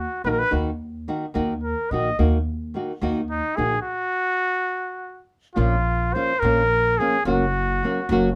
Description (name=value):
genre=mexican folk, mariachi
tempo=72 BPM (dotted quarters)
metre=6/8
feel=straight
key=Eb minor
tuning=A4 = 438 Hz
part: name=warm trumpet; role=melody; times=0.0-8.3 s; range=Eb4 to Eb5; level=-25 LUFS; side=equal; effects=none
part: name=upright bass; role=bass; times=0.0-8.4 s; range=Gb1 to Eb2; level=-27 LUFS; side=equal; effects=none
part: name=nylon-string guitar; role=accompaniment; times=0.2-8.3 s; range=Bb2 to Gb4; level=-26 LUFS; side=equal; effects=none
room=light reverb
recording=none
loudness=-23 LUFS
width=mono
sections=0.0-5.6 A section; 5.6-8.4 B section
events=stop 3.9-5.6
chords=0.0 Ebm; 5.6 Bbm; 7.3 Gb